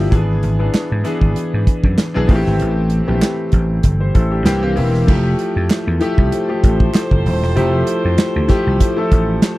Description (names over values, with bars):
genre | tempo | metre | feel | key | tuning
polished 1980s jazz-funk pop | 97 BPM | 4/4 | swing 54% on 16ths | F major | A4 = 441 Hz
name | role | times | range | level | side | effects
clear baby grand piano | accompaniment | 0.0-9.6 s | E3 to C5 | -19 LUFS | left 2 dB | analog chorus
vintage slap bass | bass | 0.0-9.4 s | Eb1 to G#2 | -17 LUFS | equal | none
modern studio drum kit | drums | 0.1-9.6 s | crash cymbal, hi-hat, kick drum, snare drum | -15 LUFS | equal | none
group handclap | percussion | 0.7-9.6 s | none | -31 LUFS | right 4 dB | none
warm horn section | second line | 6.3-9.6 s | G4 to C5 | -23 LUFS | right 1 dB | none
room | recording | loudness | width
little or no reverb | dry, close 1970s-style studio recording | -13 LUFS | side -18 dB against mid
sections
0.0-5.1 A section; 5.1-9.6 B section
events
none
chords
0.1 E7/G#; 2.3 Am7; 4.5 C7; 5.1 Fmaj9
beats
| 0.12 0.74 1.36 1.98 | 2.60 3.22 3.84 4.46 | 5.08 5.71 6.33 6.95 | 7.57 8.19 8.81 9.43